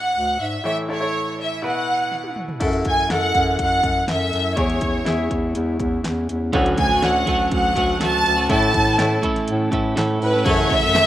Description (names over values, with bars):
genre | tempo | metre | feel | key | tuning
piano-driven pop | 122 BPM | 4/4 | straight | unclear | A4 = 435 Hz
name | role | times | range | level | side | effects
clear symphonic violin section | melody | 0.0-11.1 s | B4 to A5 | -20 LUFS | equal | none
bright grand piano | accompaniment | 0.0-11.1 s | A2 to E5 | -26 LUFS | left 1 dB | none
mellow bass clarinet | bass | 0.2-11.0 s | D2 to A2 | -23 LUFS | equal | none
pop drum kit | drums | 2.1-11.1 s | crash cymbal, handclaps, hi-hat, kick drum, ride cymbal, snare drum, toms | -26 LUFS | equal | none
chorused pulse-width pad | sustained chords | 2.6-11.1 s | D3 to A4 | -31 LUFS | left 2 dB | none
twelve-string electric guitar | riff | 6.5-11.1 s | F#2 to A4 | -23 LUFS | right 3 dB | none
group handclap | percussion | 11.0-11.1 s | none | -33 LUFS | left 3 dB | none
room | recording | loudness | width
light reverb, small room ambience | rough home demo mix | -17 LUFS | side -13 dB against mid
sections
0.0-2.6 A section; 2.6-10.5 B section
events
drum fill 2.1-2.6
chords
0.0 Dmaj7; 0.6 A; 1.6 Esus2; 2.6 F#m7; 4.6 C#m/E; 6.5 Dmaj7; 8.5 A; 10.5 F#m7